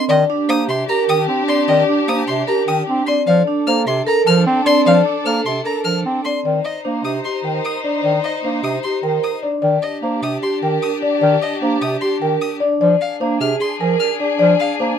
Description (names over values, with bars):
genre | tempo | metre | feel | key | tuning
classical, minimalist pattern music | 151 BPM | 4/4 | straight | C minor from 6.5 s | A4 = 439 Hz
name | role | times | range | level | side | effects
buzzing marimba with soft mallets | melody | 0.0-15.0 s | G4 to A5 | -19 LUFS | left 5 dB | none
rich violin | arpeggios | 0.0-14.7 s | Eb5 to F6 | -23 LUFS | left 2 dB | none
vibraphone with medium hard mallets | arpeggios | 0.0-15.0 s | C4 to Bb4 | -21 LUFS | right 8 dB | none
warm bass clarinet | accompaniment | 0.1-14.9 s | C3 to C4 | -20 LUFS | right 2 dB | none
warm chamber string section | sustained chords | 0.1-15.0 s | D4 to C5 | -24 LUFS | left 2 dB | none
room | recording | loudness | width
light reverb | none | -15 LUFS | side -8 dB against mid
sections
0.0-6.5 A section; 6.5-15.0 B section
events
none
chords
0.1 Ebmaj7; 3.3 Bbmaj7; 6.5 Cm7; 12.8 Bb7